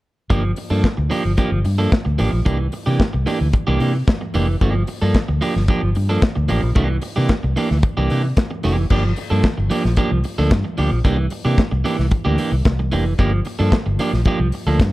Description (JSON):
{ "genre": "disco", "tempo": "112 BPM", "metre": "4/4", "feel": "straight", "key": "G dorian", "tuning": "A4 = 440 Hz", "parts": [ { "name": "electric guitar at the edge of break-up", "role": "accompaniment", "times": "0.3-14.8 s", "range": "E3 to A4", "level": "-21 LUFS", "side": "right 2 dB", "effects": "none" }, { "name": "vintage muted fingered electric bass", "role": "bass", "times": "0.3-14.9 s", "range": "F1 to C3", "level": "-19 LUFS", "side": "equal", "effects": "none" }, { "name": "modern studio drum kit", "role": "drums", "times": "0.3-14.9 s", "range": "crash cymbal, handclaps, hi-hat, kick drum, snare drum", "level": "-20 LUFS", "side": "equal", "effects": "none" } ], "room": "light reverb", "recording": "dark, warm production", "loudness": "-16 LUFS", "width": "side -18 dB against mid", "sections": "0.3-8.9 A section; 8.9-14.9 B section", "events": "none", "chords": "0.3 Gm7; 2.5 C9; 4.6 Gm7; 6.8 C9; 8.9 Gm7; 11.0 C9; 13.2 Gm7" }